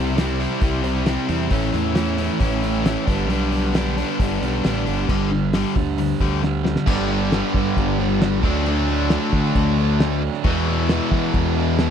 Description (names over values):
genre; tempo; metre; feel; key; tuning
classic rock; 134 BPM; 4/4; straight; unclear; A4 = 437 Hz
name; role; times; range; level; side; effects
biting overdriven guitar; riff; 0.0-11.9 s; E2 to E4; -24 LUFS; left 13 dB; none
crunchy overdriven guitar; riff; 0.0-11.9 s; G2 to E4; -24 LUFS; right 12 dB; none
growling fingered electric bass; bass; 0.0-11.9 s; G1 to E3; -24 LUFS; equal; overdrive
cloth-damped thuddy drum kit; drums; 0.2-11.9 s; crash cymbal, hi-hat, kick drum, snare drum; -23 LUFS; equal; none
tight distorted guitar; riff; 6.9-11.9 s; E2 to D4; -26 LUFS; equal; distortion
room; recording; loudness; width
studio reverb; dry, close 1970s-style studio recording; -18 LUFS; side -8 dB against mid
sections
0.0-5.1 A section; 5.1-6.9 B section; 6.9-11.9 C section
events
drum fill 6.4-6.9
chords
0.0 C; 1.5 A; 3.1 G; 5.1 G5; 6.9 G; 8.4 D; 10.4 E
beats
0.18 0.63 1.07 | 1.52 1.97 2.42 2.86 | 3.31 3.75 4.20 4.65 | 5.09 5.54 5.99 6.43 | 6.88 7.33 7.77 8.22 | 8.66 9.11 9.56 10.00 | 10.45 10.90 11.34 11.79